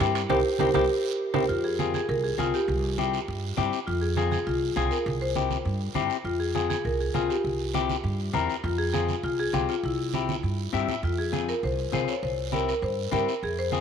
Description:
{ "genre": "latin, cumbia", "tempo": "201 BPM", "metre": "4/4", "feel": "straight", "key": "F harmonic minor", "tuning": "A4 = 440 Hz", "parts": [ { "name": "marimba with medium hard mallets", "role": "melody", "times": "0.0-13.8 s", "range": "E4 to Db5", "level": "-28 LUFS", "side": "equal", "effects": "none" }, { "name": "semi-hollow electric guitar", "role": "accompaniment", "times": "0.0-13.8 s", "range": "C4 to E5", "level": "-30 LUFS", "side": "left 11 dB", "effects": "none" }, { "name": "upright bass", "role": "bass", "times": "0.0-13.8 s", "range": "C2 to G2", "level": "-30 LUFS", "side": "right 2 dB", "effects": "none" }, { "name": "congas", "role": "percussion", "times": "0.0-13.8 s", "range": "none", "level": "-34 LUFS", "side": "right 10 dB", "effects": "none" }, { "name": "guiro", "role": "percussion", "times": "0.0-13.8 s", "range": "none", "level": "-39 LUFS", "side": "right 13 dB", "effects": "none" }, { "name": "timbales", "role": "percussion", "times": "0.0-1.4 s", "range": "none", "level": "-34 LUFS", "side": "right 15 dB", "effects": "none" } ], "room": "moderate plate reverb, RT60 2.6 s", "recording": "1960s-style stereo with parts hard left and right", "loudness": "-24 LUFS", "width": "side -7 dB against mid", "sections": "0.0-1.5 A section; 1.5-13.8 B section", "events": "band accent 0.3-1.5; clean electric guitar fill 0.6-1.5, 10.6-11.0; drum fill 0.9-1.5, 10.3-11.0", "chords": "0.0 C7; 1.5 Fm; 2.7 C; 3.9 Fm; 5.1 C; 6.3 Fm; 7.4 C7; 8.6 Fm; 9.8 C; 11.0 Fm; 12.2 C", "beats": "0.01 | 0.30 0.60 0.90 1.20 | 1.49 1.79 2.09 2.39 | 2.68 2.98 3.28 3.58 | 3.87 4.17 4.47 4.77 | 5.06 5.36 5.66 5.96 | 6.25 6.55 6.85 7.15 | 7.45 7.75 8.04 8.34 | 8.64 8.94 9.24 9.54 | 9.84 10.14 10.44 10.73 | 11.03 11.33 11.63 11.93 | 12.23 12.53 12.83 13.12 | 13.42 13.72" }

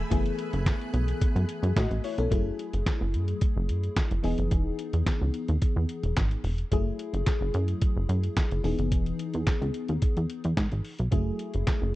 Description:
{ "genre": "early-eighties boogie funk", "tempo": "109 BPM", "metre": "4/4", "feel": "straight", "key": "F# dorian", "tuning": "A4 = 444 Hz", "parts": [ { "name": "FM electric piano with soft pad layer", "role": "accompaniment", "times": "0.0-12.0 s", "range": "E3 to D#5", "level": "-33 LUFS", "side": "left 3 dB", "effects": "chorus, phaser" }, { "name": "soft string machine", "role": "sustained chords", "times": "0.0-2.3 s", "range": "A3 to F#6", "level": "-40 LUFS", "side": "right 1 dB", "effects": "ensemble chorus" }, { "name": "plucky analog bass", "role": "bass", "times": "0.0-12.0 s", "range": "E1 to A2", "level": "-27 LUFS", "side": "equal", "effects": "none" }, { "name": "lo-fi sampler-style drum kit", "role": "drums", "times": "0.1-11.8 s", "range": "handclaps, hi-hat, kick drum, snare drum", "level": "-27 LUFS", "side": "equal", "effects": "none" } ], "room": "little or no reverb", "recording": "dry, close 1970s-style studio recording", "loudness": "-25 LUFS", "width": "side -17 dB against mid", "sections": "0.0-2.3 A section; 2.3-12.0 B section", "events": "none", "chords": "0.0 F#m11; 2.3 F#m9; 4.2 Emaj7; 6.7 F#m9; 8.6 Emaj7; 11.1 F#m9", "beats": "| 0.11 0.66 1.21 1.76 | 2.31 2.87 3.42 3.97 | 4.52 5.07 5.62 6.17 | 6.72 7.27 7.82 8.37 | 8.92 9.47 10.02 10.57 | 11.12 11.67" }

